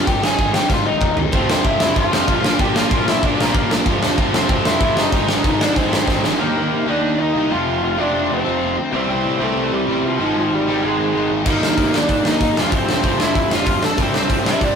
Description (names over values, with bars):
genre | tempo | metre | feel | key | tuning
punk rock | 190 BPM | 4/4 | straight | unclear | A4 = 440 Hz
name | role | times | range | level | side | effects
lead guitar through a small cranked amp | melody | 0.0-14.8 s | F3 to A5 | -21 LUFS | left 1 dB | overdrive
distorted electric guitar | riff | 0.0-14.8 s | Ab2 to G4 | -23 LUFS | left 5 dB | distortion
fuzz picked electric bass | bass | 0.1-14.8 s | F1 to C3 | -27 LUFS | equal | overdrive
big rock drum kit | drums | 0.1-6.3, 11.5-14.7 s | crash cymbal, hi-hat, kick drum, snare drum, toms | -18 LUFS | right 1 dB | none
distorted electric guitar | riff | 1.3-14.8 s | F2 to Eb4 | -22 LUFS | right 4 dB | overdrive
room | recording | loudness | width
moderate studio reverb, RT60 0.5 s | rough rehearsal-room recording, warm saturation | -15 LUFS | side -6 dB against mid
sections
0.0-6.4 A section; 6.4-14.8 B section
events
drum fill 0.7-1.3, 6.1-6.4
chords
0.1 Ab; 1.3 F; 2.4 Bb; 3.9 F; 5.1 Ab; 6.4 Eb; 7.5 F; 8.9 C; 10.2 Ab; 11.5 Eb; 12.6 F; 14.0 C